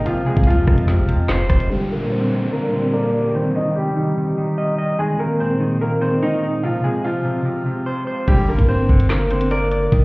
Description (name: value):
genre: hip hop, drill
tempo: 146 BPM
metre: 4/4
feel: half-time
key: G phrygian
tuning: A4 = 438 Hz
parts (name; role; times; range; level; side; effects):
- bright upright piano; melody; 0.0-9.9 s; Eb3 to Eb5; -22 LUFS; equal; low-pass filter, digital delay
- hollow clarinet-like synth lead; second line; 0.0-0.5 s; F5; -36 LUFS; right 1 dB; none
- clean electric guitar; accompaniment; 0.0-10.0 s; C3 to Eb5; -22 LUFS; equal; low-pass filter
- sweeping resonant pad; sustained chords; 0.0-8.3 s; Bb2 to F4; -26 LUFS; equal; chorus, low-pass filter
- long sustained 808-style bass; bass; 0.0-1.7, 8.3-10.0 s; F1 to G2; -19 LUFS; equal; none
- drill drum kit; drums; 0.1-1.7, 8.3-10.0 s; crash cymbal, handclaps, hi-hat, kick drum, rim click, snare drum; -17 LUFS; equal; none
- downlifter; sound effects; 1.7-5.0 s; none; -32 LUFS; equal; none
room: light reverb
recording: heard muffled through a wall, stone room reverb, EQ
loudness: -16 LUFS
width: side -24 dB against mid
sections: 0.0-1.7 A section; 1.7-8.3 B section; 8.3-10.0 C section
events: filter sweep 1.7-8.3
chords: 0.1 Fm; 1.7 Gm; 3.3 Cm; 5.0 Abadd9; 6.6 Fm; 8.3 Gm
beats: | 0.06 0.47 0.88 1.29 | 1.70 2.11 2.52 2.94 | 3.35 3.76 4.17 4.58 | 4.99 5.40 5.81 6.22 | 6.63 7.04 7.46 7.87 | 8.28 8.69 9.10 9.51 | 9.92